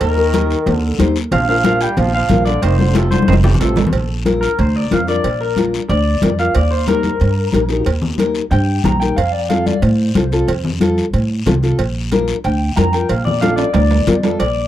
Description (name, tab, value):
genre	latin, cumbia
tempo	183 BPM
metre	4/4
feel	straight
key	Bb major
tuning	A4 = 440 Hz
part	electric guitar through a small old amp	melody	0.0-14.7 s	G4 to Bb5	-20 LUFS	left 1 dB	spring reverb
part	brilliant trombone	second line	0.0-3.8 s	A2 to G3	-25 LUFS	right 5 dB	none
part	upright bass	bass	0.0-14.7 s	F1 to A2	-17 LUFS	right 1 dB	none
part	congas	percussion	0.0-14.2 s	none	-20 LUFS	left 3 dB	none
part	cowbell and timbales	percussion	0.0-14.6 s	none	-25 LUFS	right 7 dB	none
part	guiro	percussion	0.0-14.7 s	none	-32 LUFS	left 8 dB	none
part	nylon-string guitar	accompaniment	0.2-14.4 s	C4 to C5	-19 LUFS	left 3 dB	none
room	little or no reverb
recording	dry, close 1970s-style studio recording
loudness	-13 LUFS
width	side -12 dB against mid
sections	0.0-3.9 A section; 3.9-14.4 B section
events	drum fill 3.1-3.9, 13.4-14.4; clean electric guitar solo 3.9-14.4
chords	0.0 Eb; 1.3 Bb; 2.6 F; 3.9 Bb; 6.6 Eb; 9.2 F; 11.8 Bb